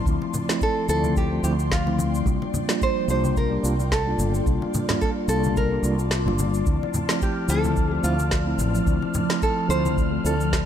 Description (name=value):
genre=sunset chillout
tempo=109 BPM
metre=4/4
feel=swing 56% on 16ths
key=D minor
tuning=A4 = 440 Hz
part: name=mellow tine electric piano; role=accompaniment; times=0.0-10.3 s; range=F3 to G4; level=-26 LUFS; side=moving between left 7 dB and right 3 dB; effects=auto-pan, tape echo
part: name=ethereal airy pad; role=sustained chords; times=0.0-10.7 s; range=F3 to C6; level=-31 LUFS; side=left 1 dB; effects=ensemble chorus, built-in reverb, phaser
part: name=mellow fretless electric bass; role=bass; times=0.1-10.7 s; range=G1 to D2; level=-24 LUFS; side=equal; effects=tube saturation
part: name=electronic kick drum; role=drums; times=0.1-10.6 s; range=none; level=-25 LUFS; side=equal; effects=none
part: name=electronic shaker and snare drum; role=drums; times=0.1-10.6 s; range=none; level=-30 LUFS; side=equal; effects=none
part: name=congas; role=percussion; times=0.2-9.9 s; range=none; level=-31 LUFS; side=left 2 dB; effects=none
part: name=nylon-string guitar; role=melody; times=0.6-10.7 s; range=F4 to C5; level=-28 LUFS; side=right 2 dB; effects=tape echo
part: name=wind-like tuned noise texture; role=texture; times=6.8-10.7 s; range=F6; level=-34 LUFS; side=equal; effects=built-in reverb
room=light reverb, digital ambience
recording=none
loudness=-20 LUFS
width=side -9 dB against mid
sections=0.0-10.7 A section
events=kick drops out 6.1-6.7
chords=0.0 Dm7; 2.3 C9sus4; 6.7 Dm7